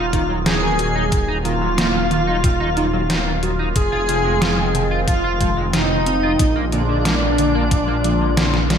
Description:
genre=synthwave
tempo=91 BPM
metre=4/4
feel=straight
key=Eb dorian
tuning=A4 = 440 Hz
part: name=wide unison lead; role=melody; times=0.0-8.8 s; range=D4 to Ab4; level=-22 LUFS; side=left 1 dB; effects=digital delay, slapback echo
part: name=airy dreamy lead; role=second line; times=0.0-8.8 s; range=D4 to Ab4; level=-26 LUFS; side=left 1 dB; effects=chorus, digital delay, slapback echo
part: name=phased analog pad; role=sustained chords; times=0.0-8.8 s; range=D3 to F4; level=-25 LUFS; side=right 1 dB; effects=phaser, chorus, sidechain pumping
part: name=clean electric guitar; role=riff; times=0.0-8.8 s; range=Bb2 to F4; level=-27 LUFS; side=right 1 dB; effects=analog chorus, digital delay, slapback echo
part: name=dark detuned saw bass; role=bass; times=0.0-8.8 s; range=Eb1 to Bb1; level=-23 LUFS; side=equal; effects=none
part: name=soft round pluck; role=arpeggios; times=0.1-8.8 s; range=C3 to Gb4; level=-27 LUFS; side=right 4 dB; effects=chorus, digital delay, slapback echo
part: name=detuned 8-bit digital drum machine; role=drums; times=0.1-8.8 s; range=hi-hat, snare drum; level=-22 LUFS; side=equal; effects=none
part: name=electronic kick drum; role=drums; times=0.1-7.8 s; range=none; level=-20 LUFS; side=equal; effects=none
room=moderate lush hall reverb, RT60 1.5 s, digital ambience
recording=big arena sound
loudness=-16 LUFS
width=side -8 dB against mid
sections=0.0-8.8 A section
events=drum fill 8.5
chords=0.0 Ebm; 3.8 Fm7; 6.4 Bb7

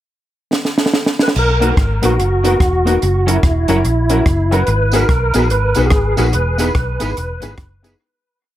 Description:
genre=ska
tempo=144 BPM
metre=4/4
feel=swing 61% on 8ths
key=B major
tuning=A4 = 438 Hz
part: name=compact cocktail drum kit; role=drums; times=0.5-7.9 s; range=crash cymbal, hi-hat, kick drum, rim click, snare drum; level=-17 LUFS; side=right 1 dB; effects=dub echo
part: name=tonewheel organ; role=melody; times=1.2-7.5 s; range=E4 to B4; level=-18 LUFS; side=right 1 dB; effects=chorus vibrato, slow rotary speaker, dub echo
part: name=vintage muted fingered electric bass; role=bass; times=1.4-7.9 s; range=E1 to B1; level=-17 LUFS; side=equal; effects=none
part: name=mellow electric guitar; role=accompaniment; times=1.6-7.9 s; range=F#3 to B4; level=-20 LUFS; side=right 2 dB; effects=ensemble chorus
part: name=honky-tonk upright piano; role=stabs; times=1.6-7.9 s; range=B3 to A#4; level=-21 LUFS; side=left 4 dB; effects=none
part: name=tambourine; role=percussion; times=4.9-7.9 s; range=none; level=-32 LUFS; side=right 4 dB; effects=none
room=light reverb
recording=none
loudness=-12 LUFS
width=side -13 dB against mid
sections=0.0-1.4 pickup bar; 1.4-8.0 head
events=drum fill 0.5-1.4; fade-out 6.3-8.0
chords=0.0 N.C.; 1.4 Bmaj7; 3.0 F#7; 4.7 G#m7; 6.3 Emaj7

